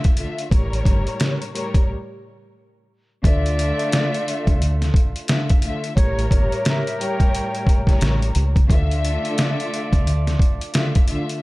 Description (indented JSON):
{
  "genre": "hip hop, boom-bap hip-hop",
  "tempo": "88 BPM",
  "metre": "4/4",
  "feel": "swing 60% on 16ths",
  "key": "D harmonic minor",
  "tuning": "A4 = 441 Hz",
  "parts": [
    { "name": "warm studio string section", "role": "accompaniment", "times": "0.0-11.4 s", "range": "A2 to E5", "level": "-26 LUFS", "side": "left 2 dB", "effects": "cassette tape, high-pass filter, low-pass filter" },
    { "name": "trip hop sampler-style drum kit", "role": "drums", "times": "0.0-11.4 s", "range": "hi-hat, kick drum, snare drum", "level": "-18 LUFS", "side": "equal", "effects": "none" },
    { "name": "deep dub fingered electric bass", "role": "bass", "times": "0.5-10.4 s", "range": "G1 to D2", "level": "-20 LUFS", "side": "equal", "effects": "none" },
    { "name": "mellow jazz flute", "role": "melody", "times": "3.2-8.0 s", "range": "C#5 to G5", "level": "-28 LUFS", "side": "equal", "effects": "high-pass filter, low-pass filter, analog delay" },
    { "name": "mellow horn section", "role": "stabs", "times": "3.3-11.0 s", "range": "A3 to D5", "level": "-32 LUFS", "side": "right 1 dB", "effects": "high-pass filter, low-pass filter, analog delay" }
  ],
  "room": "small room ambience",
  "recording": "dark, warm production",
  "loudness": "-17 LUFS",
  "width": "side -20 dB against mid",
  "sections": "0.0-3.2 A section; 3.2-11.4 B section",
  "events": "break 1.9-3.2",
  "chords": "0.0 Dmadd9; 0.5 A7b9; 3.2 Dmadd9; 6.0 A7b9; 8.7 Dmadd9",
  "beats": "| 0.52 1.20 1.88 2.56 | 3.24 3.92 4.61 5.29 | 5.97 6.65 7.33 8.02 | 8.70 9.38 10.06 10.74"
}